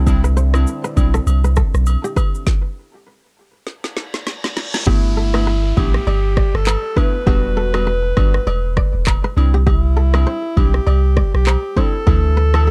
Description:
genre	afrobeats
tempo	100 BPM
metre	4/4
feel	swing 58% on 16ths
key	G major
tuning	A4 = 443 Hz
part	warm analog keys	accompaniment	0.0-1.2, 4.9-12.7 s	E3 to F#4	-27 LUFS	equal	chorus
part	warm analog pad	sustained chords	0.0-2.4 s	D3 to E4	-33 LUFS	equal	chorus
part	kora	riff	0.0-12.7 s	G4 to D5	-28 LUFS	equal	tape echo
part	punchy sub bass	bass	0.0-12.7 s	E1 to D2	-18 LUFS	equal	none
part	afro-pop drum kit	drums	0.1-12.7 s	handclaps, kick drum, rim click, shaker, snare drum	-20 LUFS	equal	none
part	agogo bells and woodblock	percussion	0.1-12.7 s	none	-32 LUFS	equal	none
part	reverse cymbal and downlifter	sound effects	3.9-9.7 s	none	-35 LUFS	equal	none
part	breathy alto saxophone	melody	4.9-12.7 s	E4 to B4	-26 LUFS	equal	tape echo
room	little or no reverb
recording	dark, warm production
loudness	-17 LUFS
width	mono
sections	0.0-4.9 A section; 4.9-12.7 B section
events	stop 2.5-4.9; drum fill 3.7-4.9; reverse cymbal 3.9-4.9; hi-hats muted 4.9-12.7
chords	0.0 Cadd9; 2.5 N.C.; 4.9 G6; 7.3 Em7; 9.4 Cadd9; 12.1 Dsus2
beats	| 0.07 0.67 1.27 1.87 | 2.47 3.07 3.67 4.27 | 4.87 5.47 6.07 6.67 | 7.27 7.87 8.47 9.07 | 9.67 10.27 10.87 11.47 | 12.07 12.67

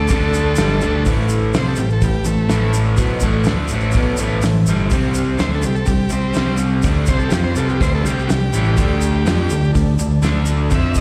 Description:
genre	garage rock duo or trio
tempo	124 BPM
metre	4/4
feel	straight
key	A minor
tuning	A4 = 439 Hz
part	overdriven combo organ	melody	0.0-11.0 s	G3 to E5	-26 LUFS	equal	slapback echo, tape echo
part	combo organ	sustained chords	0.0-11.0 s	C4 to A5	-32 LUFS	equal	none
part	crunchy overdriven guitar	riff	0.0-11.0 s	G2 to F4	-21 LUFS	equal	slapback echo
part	picked electric bass	bass	0.0-11.0 s	G1 to F2	-22 LUFS	equal	overdrive
part	cloth-damped thuddy drum kit	drums	0.1-11.0 s	hi-hat, kick drum, snare drum	-22 LUFS	equal	none
part	tube shaker	percussion	0.1-11.0 s	none	-34 LUFS	equal	none
room	small room ambience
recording	live gig heard through the venue's PA, recital hall reverb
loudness	-17 LUFS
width	mono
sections	0.0-1.1 A section; 1.1-11.0 B section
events	transistor combo organ solo 0.0-1.1; transistor combo organ fill 3.9-4.9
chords	0.0 D5; 0.6 G5; 1.1 Am; 4.9 C5; 8.8 D5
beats	0.10 0.58 | 1.06 1.54 2.02 2.50 | 2.98 3.47 3.95 4.43 | 4.91 5.39 5.88 6.36 | 6.84 7.32 7.81 8.29 | 8.77 9.26 9.74 10.22 | 10.70

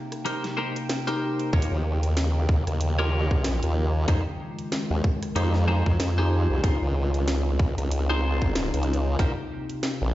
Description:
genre	glitch hop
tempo	94 BPM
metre	4/4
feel	swing 57% on 16ths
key	C phrygian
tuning	A4 = 440 Hz
part	warbly tape-like pad	sustained chords	0.0-10.1 s	C3 to G5	-32 LUFS	left 1 dB	chorus, built-in reverb, sidechain pumping
part	drum and bass drum kit	drums	0.1-10.0 s	hi-hat, rim click, snare drum	-32 LUFS	equal	overdrive, studio reverb
part	clean electric guitar	stabs	0.2-9.3 s	Eb4 to Db5	-30 LUFS	left 1 dB	phaser, sidechain pumping, dub echo
part	formant-sweep wobble bass	bass	1.5-10.1 s	Bb1 to F2	-24 LUFS	equal	chorus, tube saturation
part	electronic kick drum	drums	1.5-9.3 s	none	-23 LUFS	equal	overdrive, studio reverb
room	light reverb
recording	played on a big sound system in a bare room, large studio reverb, nothing above 7.7 kHz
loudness	-22 LUFS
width	side -15 dB against mid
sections	0.0-10.1 A section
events	break 0.0-1.5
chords	0.0 Cm7; 1.5 Eb9; 4.1 Fm9; 6.6 Dbmaj9; 9.2 Cm7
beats	0.25 0.89 | 1.53 2.17 2.81 3.44 | 4.08 4.72 5.36 6.00 | 6.64 7.28 7.91 8.55 | 9.19 9.83

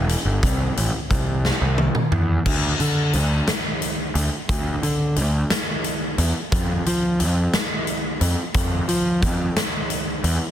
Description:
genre	quiet-loud alternative rock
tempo	59 BPM (dotted quarters)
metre	6/8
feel	straight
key	unclear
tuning	A4 = 440 Hz
part	fuzz picked electric bass	bass	0.0-10.4 s	E1 to F3	-21 LUFS	equal	overdrive
part	big rock drum kit	drums	0.1-10.4 s	crash cymbal, hi-hat, kick drum, snare drum, toms	-22 LUFS	equal	none
room	little or no reverb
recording	dense, heavily limited modern master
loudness	-19 LUFS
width	side -10 dB against mid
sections	0.0-2.5 A section; 2.5-10.5 B section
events	drum fill 1.4-2.5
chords	none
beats	| 0.43 1.45 | 2.46 3.48 | 4.49 5.51 | 6.52 7.54 | 8.55 9.57

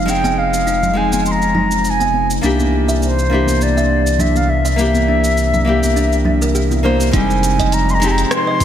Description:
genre	sunset chillout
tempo	102 BPM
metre	4/4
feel	swing 55% on 16ths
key	F dorian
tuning	A4 = 440 Hz
part	wooden flute	melody	0.0-8.6 s	C5 to C6	-18 LUFS	equal	digital delay
part	nylon-string guitar	accompaniment	0.0-8.6 s	G3 to C5	-20 LUFS	moving between left 4 dB and right 2 dB	auto-pan, digital delay
part	airy breathy pad	sustained chords	0.0-8.6 s	C3 to Eb4	-22 LUFS	equal	chorus
part	warm sub bass	bass	0.0-8.6 s	F1 to C2	-18 LUFS	equal	none
part	smooth R&B drum kit	drums	0.1-8.6 s	cabasa, hi-hat, rim click	-25 LUFS	right 1 dB	gated reverb
part	kalimba	arpeggios	0.2-8.6 s	D4 to Ab5	-24 LUFS	right 3 dB	digital delay
part	congas	percussion	0.2-7.0 s	none	-26 LUFS	left 2 dB	none
part	electronic kick drum	drums	7.1-8.6 s	none	-19 LUFS	equal	none
room	moderate lush hall reverb, RT60 2.9 s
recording	bright 1980s-style digital production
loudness	-13 LUFS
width	side -10 dB against mid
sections	0.0-7.1 A section; 7.1-8.6 B section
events	none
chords	0.0 Fm7; 2.4 C9; 7.1 Fm7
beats	| 0.08 0.67 1.25 1.84 | 2.43 3.02 3.61 4.20 | 4.79 5.37 5.96 6.55 | 7.14 7.73 8.31

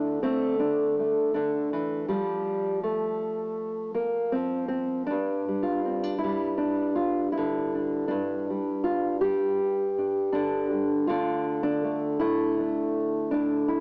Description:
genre	folk, solo fingerstyle acoustic guitar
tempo	80 BPM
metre	4/4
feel	straight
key	unclear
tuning	A4 = 440 Hz
part	nylon-string guitar	solo	0.0-13.8 s	G2 to G4	-27 LUFS	equal	cassette tape
room	light reverb, studio reverb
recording	home recording on cassette, small speaker sound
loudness	-27 LUFS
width	mono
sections	0.0-13.8 A section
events	none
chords	0.0 Dsus2; 2.1 N.C.; 5.1 G5; 11.1 Dmadd9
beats	0.61 1.36 | 2.10 2.85 3.60 4.35 | 5.10 5.86 6.61 7.36 | 8.11 8.85 9.60 10.35 | 11.09 11.84 12.58 13.33

